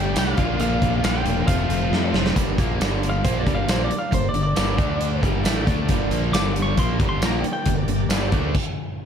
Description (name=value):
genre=classic rock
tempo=136 BPM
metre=4/4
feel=straight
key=G minor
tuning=A4 = 440 Hz
part: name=lightly driven lead guitar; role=melody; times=0.0-7.7 s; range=C5 to D6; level=-28 LUFS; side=equal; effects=tape echo
part: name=picked old ladder-braced acoustic guitar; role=accompaniment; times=0.0-8.6 s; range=G2 to Bb4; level=-33 LUFS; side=right 10 dB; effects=none
part: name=bright tonewheel organ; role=sustained chords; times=0.0-8.5 s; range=A3 to D5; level=-38 LUFS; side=equal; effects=none
part: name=biting overdriven guitar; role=riff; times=0.0-8.5 s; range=G2 to G4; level=-28 LUFS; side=left 13 dB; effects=none
part: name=fuzz guitar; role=riff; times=0.0-2.4, 5.9-8.5 s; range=G2 to G4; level=-29 LUFS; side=left 2 dB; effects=none
part: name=overdriven electric guitar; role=riff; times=0.0-8.5 s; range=F2 to G4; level=-29 LUFS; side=right 12 dB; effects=none
part: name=growling fingered electric bass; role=bass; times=0.0-8.5 s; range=E1 to F2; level=-26 LUFS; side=equal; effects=overdrive
part: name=big rock drum kit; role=drums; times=0.2-8.6 s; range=crash cymbal, hi-hat, kick drum, snare drum, tambourine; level=-23 LUFS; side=equal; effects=none
room=light reverb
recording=none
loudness=-19 LUFS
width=side -8 dB against mid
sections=0.0-2.4 A section; 2.4-9.1 B section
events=drum fill 1.9-2.4; lead electric guitar solo 2.4-9.1; stop 8.5-9.1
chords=0.4 Bb; 1.5 F; 2.4 Gm; 4.8 D5; 5.2 Gm; 8.5 N.C.